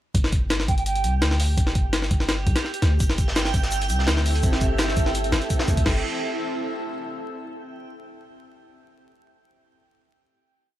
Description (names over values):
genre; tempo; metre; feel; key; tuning
drum and bass, jungle; 168 BPM; 4/4; straight; unclear; A4 = 439 Hz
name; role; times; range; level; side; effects
long sustained 808-style bass; bass; 0.1-6.0 s; G1 to D2; -23 LUFS; equal; none
breakbeat sampler-style drum kit; drums; 0.1-5.9 s; crash cymbal, hi-hat, kick drum, snare drum; -23 LUFS; equal; none
backwards swelling texture; texture; 1.0-5.9 s; G4 to G5; -33 LUFS; right 3 dB; built-in reverb
mellow hollow silver concert flute; melody; 0.7-1.1 s; G5; -30 LUFS; right 5 dB; vintage 12-bit sampler grit, dub echo
crunchy breakbeat drum kit; drums; 3.0-5.8 s; hi-hat, shaker, snare drum; -32 LUFS; left 1 dB; high-pass filter on hats, high-pass filter on snare, high-pass filter on perc, high-pass filter on room
room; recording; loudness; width
little or no reverb; vinyl crackle; -20 LUFS; side -13 dB against mid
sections
0.1-5.9 drop; 5.9-7.3 final chord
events
drop 0.1-5.9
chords
0.1 G5; 3.0 Am/G; 5.9 Gm7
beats
| 0.15 0.50 0.86 1.22 | 1.57 1.93 2.29 2.65 | 3.00 3.36 3.72 4.08 | 4.43 4.79 5.15 5.50 | 5.86